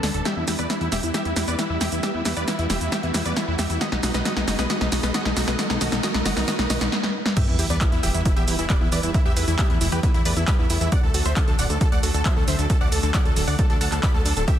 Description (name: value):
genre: uplifting trance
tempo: 135 BPM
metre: 4/4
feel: straight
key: E minor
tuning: A4 = 439 Hz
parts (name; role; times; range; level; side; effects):
- dense compressed supersaw; melody; 0.0-14.5 s; D#4 to B5; -28 LUFS; right 1 dB; sidechain pumping, low-pass filter, tape echo
- analog string pad; sustained chords; 0.0-14.6 s; E3 to E4; -33 LUFS; equal; ensemble chorus, sidechain pumping
- analog pluck; arpeggios; 0.0-14.5 s; D3 to B4; -32 LUFS; left 3 dB; chorus, sidechain pumping, tape echo
- fat analog bass; bass; 0.0-14.4 s; D1 to E2; -26 LUFS; equal; sidechain pumping
- punchy analog drum machine; drums; 0.0-14.6 s; crash cymbal, handclaps, hi-hat, shaker, snare drum; -25 LUFS; equal; none
- riser and sub drop; sound effects; 0.0-9.1 s; none; -33 LUFS; right 1 dB; none
- electronic kick drum; drums; 7.4-14.6 s; none; -21 LUFS; equal; none
room: moderate lush hall reverb, RT60 1.9 s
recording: dense, heavily limited modern master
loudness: -19 LUFS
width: side -10 dB against mid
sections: 0.0-7.4 A section; 7.4-14.6 B section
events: build-up 0.0-7.4; drum fill 0.0-6.9, 6.9-7.4; riser 0.0-6.9; filter sweep on synth pluck 0.0-7.4; drop 7.4-14.6; impact 7.4-9.1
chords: 0.3 Em; 3.8 B; 7.4 Em; 10.9 D